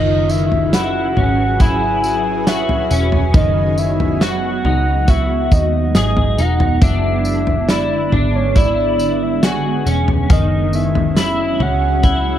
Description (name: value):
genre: dream pop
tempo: 69 BPM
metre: 4/4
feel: straight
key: unclear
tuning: A4 = 440 Hz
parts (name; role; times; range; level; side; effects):
- soft octave-layered synth lead; melody; 0.0-12.4 s; C#5 to G#5; -20 LUFS; right 1 dB; chorus, phaser, digital delay
- shimmering ambient pad; sustained chords; 0.0-12.4 s; D3 to B4; -22 LUFS; right 2 dB; chorus, built-in reverb
- electric guitar at the edge of break-up; arpeggios; 0.0-12.4 s; D#3 to G#4; -21 LUFS; left 3 dB; ensemble chorus, digital delay
- vintage muted picked electric bass; bass; 0.0-12.4 s; E1 to D#2; -19 LUFS; equal; none
- loose indie drum kit; drums; 0.3-12.2 s; kick drum, snare drum, tambourine, toms; -17 LUFS; equal; none
room: light reverb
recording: dark, warm production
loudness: -13 LUFS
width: side -11 dB against mid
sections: 0.0-12.4 A section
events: none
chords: 0.0 F#9sus4; 6.8 Bm6/F#; 10.3 E69/F#